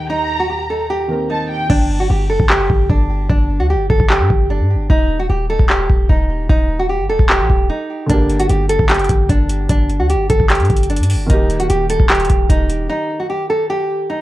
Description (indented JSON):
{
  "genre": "hip hop, trap",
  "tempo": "150 BPM",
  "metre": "4/4",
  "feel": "half-time",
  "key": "G harmonic minor",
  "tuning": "A4 = 440 Hz",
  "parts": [
    { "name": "nylon-string guitar", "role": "melody", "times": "0.0-14.2 s", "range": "D4 to A4", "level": "-18 LUFS", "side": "right 1 dB", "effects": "tape echo" },
    { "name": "warm studio violin section", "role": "second line", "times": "0.0-1.7 s", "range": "G5 to Bb5", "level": "-22 LUFS", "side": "right 2 dB", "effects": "tape echo" },
    { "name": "dark baby grand piano", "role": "accompaniment", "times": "0.0-1.7, 8.1-14.2 s", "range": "D3 to G4", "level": "-25 LUFS", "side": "right 1 dB", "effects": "none" },
    { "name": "dark analog pad", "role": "sustained chords", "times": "0.0-1.7 s", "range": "Eb2 to G4", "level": "-32 LUFS", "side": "left 1 dB", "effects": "chorus, phaser" },
    { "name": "warm 808-style bass", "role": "bass", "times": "1.7-12.9 s", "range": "Eb1 to G2", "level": "-17 LUFS", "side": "equal", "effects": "none" },
    { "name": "booming analog drum machine", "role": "drums", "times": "1.7-12.8 s", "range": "crash cymbal, handclaps, hi-hat, kick drum", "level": "-15 LUFS", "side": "equal", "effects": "overdrive" }
  ],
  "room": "light reverb, digital ambience",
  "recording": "worn, warbling old tape, cassette tape, warbly pitch drift",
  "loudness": "-13 LUFS",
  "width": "side -16 dB against mid",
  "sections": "0.0-1.7 A section; 1.7-14.2 B section",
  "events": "hi-hats muted 1.7-8.1; break 7.7-8.1, 12.9-14.2",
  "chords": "0.0 Eb; 1.7 G5; 4.9 Eb; 8.1 Gm; 11.3 Eb",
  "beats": "| 0.10 0.50 0.90 1.30 | 1.70 2.10 2.50 2.90 | 3.30 3.70 4.10 4.50 | 4.90 5.30 5.70 6.10 | 6.50 6.90 7.30 7.70 | 8.10 8.50 8.90 9.30 | 9.70 10.10 10.50 10.90 | 11.30 11.70 12.10 12.50 | 12.90 13.30 13.70 14.10"
}